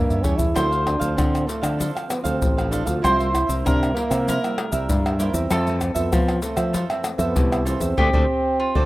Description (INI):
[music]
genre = samba and choro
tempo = 97 BPM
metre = 4/4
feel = straight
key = unclear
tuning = A4 = 443 Hz
[part]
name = mellow French horn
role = melody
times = 0.0-8.9 s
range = G3 to F4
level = -26 LUFS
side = right 2 dB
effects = none
[part]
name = mandolin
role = second line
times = 0.0-8.9 s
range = F4 to C5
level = -25 LUFS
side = equal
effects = none
[part]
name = cavaquinho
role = accompaniment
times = 0.0-8.9 s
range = D4 to F5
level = -29 LUFS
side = right 4 dB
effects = none
[part]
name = nylon-string guitar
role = accompaniment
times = 0.0-8.9 s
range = F2 to E4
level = -33 LUFS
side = left 2 dB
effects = none
[part]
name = modern bright fingered electric bass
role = bass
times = 0.0-8.9 s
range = A1 to F3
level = -24 LUFS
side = equal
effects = none
[part]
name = surdo, egg shaker, pandeiro and tamborim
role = percussion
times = 0.1-8.9 s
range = none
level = -24 LUFS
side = left 1 dB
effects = none
[sound]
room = light reverb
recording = rough home demo mix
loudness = -19 LUFS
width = side -18 dB against mid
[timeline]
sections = 0.0-8.9 A section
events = drum fill 0.0-0.6; band accent 8.0-8.9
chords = 0.0 A7b9; 0.6 Dm9; 3.0 C7; 5.5 Fmaj7; 8.0 Dm7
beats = | 0.56 1.18 1.80 2.42 | 3.04 3.65 4.27 4.89 | 5.51 6.13 6.74 7.36 | 7.98 8.60